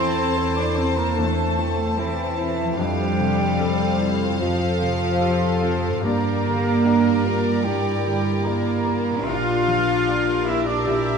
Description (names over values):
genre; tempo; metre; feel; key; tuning
cinematic; 75 BPM; 4/4; rubato; F major; A4 = 444 Hz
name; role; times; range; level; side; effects
warm symphonic violin section; melody; 0.0-11.2 s; D5 to A5; -31 LUFS; left 4 dB; none
dark clarinet; second line; 0.0-11.2 s; C4 to A4; -30 LUFS; equal; none
mellow cor anglais; second line; 0.0-11.2 s; E4 to F5; -32 LUFS; right 2 dB; none
mellow flute section; second line; 0.0-11.2 s; E5 to F6; -30 LUFS; right 4 dB; none
warm chamber violin section; second line; 0.0-11.2 s; Bb4 to C5; -32 LUFS; left 7 dB; none
dark grand piano; accompaniment; 0.0-11.2 s; E2 to D5; -29 LUFS; left 4 dB; none
dark studio viola section; accompaniment; 0.0-11.2 s; G4 to A4; -31 LUFS; right 1 dB; none
mellow French horn section; sustained chords; 0.0-11.2 s; E3 to F4; -27 LUFS; left 4 dB; none
concert harp; arpeggios; 0.0-11.2 s; G2 to C5; -33 LUFS; left 9 dB; none
dark studio double bass section; bass; 0.0-11.2 s; Bb1 to G2; -28 LUFS; right 3 dB; none
rich symphonic cello section; bass; 0.0-11.2 s; E3 to F4; -25 LUFS; right 3 dB; none
room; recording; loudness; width
moderate scoring stage reverb, RT60 1.8 s; dark, warm production; -19 LUFS; side -6 dB against mid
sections
0.0-11.2 A section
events
none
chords
0.0 Am/E; 2.8 Fadd9; 6.0 Gm; 9.3 Bb6